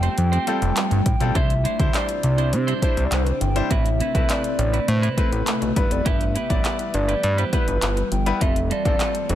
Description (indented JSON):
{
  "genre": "dance-pop",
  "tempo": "102 BPM",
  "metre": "4/4",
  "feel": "straight",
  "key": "C major",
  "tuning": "A4 = 440 Hz",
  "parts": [
    { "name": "hollow clarinet-like synth lead", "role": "melody", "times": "0.0-9.4 s", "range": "B4 to G5", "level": "-26 LUFS", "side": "equal", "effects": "chorus, ping-pong delay" },
    { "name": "bright grand piano", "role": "accompaniment", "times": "0.0-9.4 s", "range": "G3 to D5", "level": "-29 LUFS", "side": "left 5 dB", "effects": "sidechain pumping" },
    { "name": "granular cloud pad", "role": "sustained chords", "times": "0.0-9.4 s", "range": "C3 to B4", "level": "-30 LUFS", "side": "equal", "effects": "built-in reverb, sidechain pumping" },
    { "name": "clean electric guitar", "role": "riff", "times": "0.0-9.3 s", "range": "G3 to C5", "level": "-31 LUFS", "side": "right 6 dB", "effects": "wide subtle chorus" },
    { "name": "fat analog bass", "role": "bass", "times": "0.0-9.4 s", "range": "F1 to C3", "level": "-22 LUFS", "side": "equal", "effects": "sidechain pumping" },
    { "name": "punchy analog drum machine", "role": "drums", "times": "0.0-9.4 s", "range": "handclaps, hi-hat, kick drum", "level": "-23 LUFS", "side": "equal", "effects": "none" }
  ],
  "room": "little or no reverb",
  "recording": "none",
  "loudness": "-19 LUFS",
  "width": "side -12 dB against mid",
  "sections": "0.0-9.4 A section",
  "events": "none",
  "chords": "0.0 Fadd9; 1.4 Cadd9; 3.7 Amadd9; 5.8 Em; 8.4 Fadd9",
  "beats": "0.18 0.77 | 1.35 1.94 2.53 3.12 | 3.71 4.29 4.88 5.47 | 6.06 6.65 7.24 7.82 | 8.41 9.00"
}